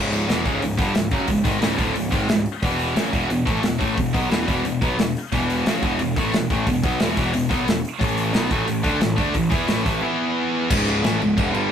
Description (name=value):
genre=heavy metal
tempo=178 BPM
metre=4/4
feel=straight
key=unclear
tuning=A4 = 441 Hz
part: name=high-gain distorted guitar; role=riff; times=0.0-11.7 s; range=C#2 to E4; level=-21 LUFS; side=equal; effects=distortion
part: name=fuzz picked electric bass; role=bass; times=0.0-11.7 s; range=C#1 to E2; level=-28 LUFS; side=equal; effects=overdrive
part: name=modern studio drum kit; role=drums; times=0.1-11.6 s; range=crash cymbal, hi-hat, kick drum, snare drum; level=-23 LUFS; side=equal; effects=none
room=light reverb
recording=rough rehearsal-room recording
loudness=-19 LUFS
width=side -8 dB against mid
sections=0.0-10.7 A section; 10.7-11.7 B section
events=break 10.0-10.7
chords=0.0 C#m; 2.6 E5; 8.0 A5; 10.0 E5; 10.7 C#m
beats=0.28 0.61 0.95 | 1.28 1.62 1.95 2.29 | 2.62 2.96 3.30 3.63 | 3.97 4.30 4.64 4.98 | 5.31 5.65 5.99 6.32 | 6.66 7.00 7.33 7.67 | 8.01 8.34 8.68 9.02 | 9.35 9.69 10.03 10.36 | 10.70 11.04 11.37